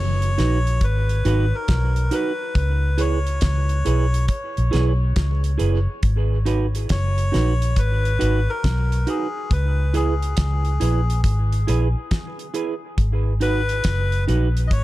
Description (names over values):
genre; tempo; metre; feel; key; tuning
dub reggae; 69 BPM; 4/4; swing 64% on 16ths; G# minor; A4 = 441 Hz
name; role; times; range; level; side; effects
melodica; melody; 0.0-14.8 s; G#4 to D#5; -28 LUFS; left 2 dB; dub echo
vintage muted fingered electric bass; bass; 0.0-14.8 s; F#1 to C#2; -19 LUFS; equal; none
damped 70s drum kit; drums; 0.2-14.8 s; hi-hat, kick drum, snare drum; -24 LUFS; equal; none
semi-hollow electric guitar; accompaniment; 0.4-14.5 s; D#4 to B4; -27 LUFS; right 5 dB; dub echo
room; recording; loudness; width
small room reverb; dark, warm production; -18 LUFS; side -16 dB against mid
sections
0.0-14.8 A section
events
none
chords
0.0 G#m7; 2.6 C#m7; 6.0 G#m7; 9.5 C#m7; 13.0 G#m7